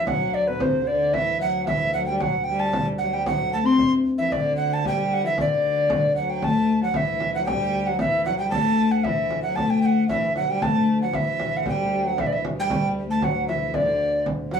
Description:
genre	medieval dance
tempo	114 BPM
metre	2/4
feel	straight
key	D mixolydian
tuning	A4 = 440 Hz
part	breathy bright alto recorder	melody	0.0-14.6 s	B4 to C6	-23 LUFS	right 1 dB	none
part	dark viola da gamba	second line	0.0-14.6 s	B2 to C4	-24 LUFS	left 3 dB	none
part	hand-pumped harmonium	drone	0.0-14.6 s	D2	-34 LUFS	equal	none
part	frame drum	percussion	0.1-14.6 s	none	-29 LUFS	right 2 dB	none
room	wet small room ambience, RT60 0.5 s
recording	band playing live in one room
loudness	-20 LUFS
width	side -7 dB against mid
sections	0.0-6.4 A section; 6.4-14.6 B section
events	none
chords	none

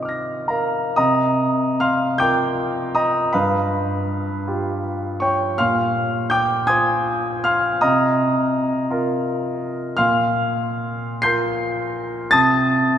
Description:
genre	classical, impressionist solo piano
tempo	38-57 BPM (dotted quarters)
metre	6/8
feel	rubato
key	C minor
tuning	A4 = 440 Hz
part	clear concert grand piano	solo	0.0-13.0 s	G2 to C7	-18 LUFS	equal	none
room	wet cathedral reverb, RT60 4.5 s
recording	recorded in a church or concert hall, nothing above 10.4 kHz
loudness	-18 LUFS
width	side -9 dB against mid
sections	1.0-13.0 A section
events	none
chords	0.0 Cm11; 3.3 G7#11; 5.6 Bb9; 7.8 Cm7; 10.0 Bbsus2; 12.3 Cm

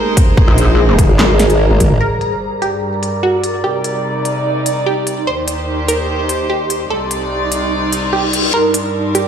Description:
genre	heavy wobble dubstep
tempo	147 BPM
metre	4/4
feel	half-time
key	G minor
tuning	A4 = 440 Hz
part	rich chamber string section	sustained chords	0.0-9.3 s	C2 to D5	-20 LUFS	right 1 dB	sidechain pumping, low-pass filter
part	granular cloud pad	texture	0.0-9.3 s	Eb4 to C6	-20 LUFS	equal	built-in reverb, sidechain pumping
part	big-room dance drum kit	drums	0.2-9.2 s	handclaps, hi-hat, snare drum, toms	-18 LUFS	equal	overdrive, low-pass filter on hats, studio reverb, low-pass filter on snare, low-pass filter on toms
part	electronic kick drum	drums	0.2-1.9 s	none	-12 LUFS	equal	overdrive, studio reverb
part	pulsing pluck wobble bass	bass	0.5-1.1 s	Bb1	-11 LUFS	equal	chorus, overdrive
part	formant-sweep wobble bass	bass	1.1-2.0 s	Ab1	-12 LUFS	equal	chorus, overdrive
part	wide unison pluck	melody	2.0-9.3 s	F#4 to C5	-19 LUFS	right 2 dB	digital delay
part	reverse cymbal and riser	sound effects	7.9-9.3 s	none	-20 LUFS	left 5 dB	none
room	light reverb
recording	played on a big sound system in a bare room, large studio reverb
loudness	-12 LUFS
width	side -8 dB against mid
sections	0.0-2.0 A section; 2.0-8.5 B section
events	drop 0.0-2.0; drum fill 1.7-2.0; filter sweep on drum 2.0-8.5; filter sweep on string section 2.0-8.5; reverse cymbal 7.9-8.5; riser 8.5-9.3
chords	0.0 Abadd9; 2.0 Gm; 3.6 Cmadd9; 5.3 Eb6; 6.9 Cmadd9; 8.5 Gm

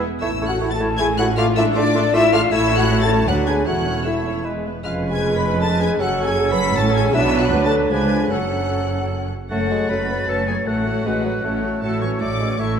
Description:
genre	quick classical-period movement for symphony orchestra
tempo	156 BPM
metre	3/4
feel	straight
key	A major, F# minor from 4.8 s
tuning	A4 = 441 Hz
part	clear oboe	second line	0.0-12.8 s	F#4 to D5	-31 LUFS	equal	none
part	rich chamber violin section	second line	0.0-12.8 s	C#4 to B5	-32 LUFS	left 2 dB	none
part	rich chamber viola section	accompaniment	0.0-12.8 s	E3 to C#5	-26 LUFS	right 1 dB	none
part	warm bassoon	accompaniment	0.0-12.8 s	E#3 to A3	-26 LUFS	right 2 dB	none
part	rich symphonic cello section	bass	0.0-12.8 s	C#2 to B2	-25 LUFS	right 2 dB	none
part	rich chamber violin section	melody	0.2-12.8 s	F#5 to B6	-29 LUFS	left 4 dB	none
part	bright clarinet	second line	0.2-12.8 s	C#4 to E5	-29 LUFS	equal	none
part	mellow silver concert flute	second line	0.2-12.8 s	D5 to A6	-27 LUFS	left 2 dB	none
part	mellow French horn section	sustained chords	0.2-12.8 s	D4 to B4	-24 LUFS	left 3 dB	none
part	rich chamber double bass section	bass	0.2-12.8 s	E1 to D2	-26 LUFS	right 2 dB	none
room	wet scoring stage reverb, RT60 1.8 s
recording	dark, warm production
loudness	-17 LUFS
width	side -7 dB against mid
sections	0.2-9.5 A section; 9.5-12.8 B section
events	none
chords	0.2 A; 1.4 Dm/A; 2.5 A; 3.3 Bm/D; 3.7 A/E; 4.5 E; 4.8 C#7/E#; 6.0 F#m; 7.1 Bm; 7.9 C#7b9; 8.3 F#m; 10.7 F#m/A; 11.8 A

